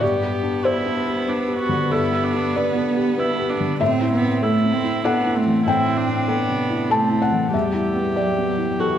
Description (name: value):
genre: neoclassical piano and strings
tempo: 96 BPM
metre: 3/4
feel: rubato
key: G major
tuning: A4 = 439 Hz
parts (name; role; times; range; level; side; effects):
- warm cello; second line; 0.0-9.0 s; E3 to C4; -23 LUFS; right 2 dB; none
- felt-muted upright piano; accompaniment; 0.0-9.0 s; E2 to A5; -21 LUFS; left 2 dB; none
- rich viola; accompaniment; 0.0-9.0 s; B3 to G4; -25 LUFS; right 2 dB; none
room: wet concert hall reverb, RT60 2.4 s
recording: recorded in a church or concert hall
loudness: -18 LUFS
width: side -10 dB against mid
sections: 0.0-9.0 A section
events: none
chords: 0.0 G; 3.8 Am; 7.5 Em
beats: | 0.02 0.65 1.28 | 1.91 2.56 3.19 | 3.81 4.42 5.05 | 5.67 6.29 6.91 | 7.54 8.16 8.80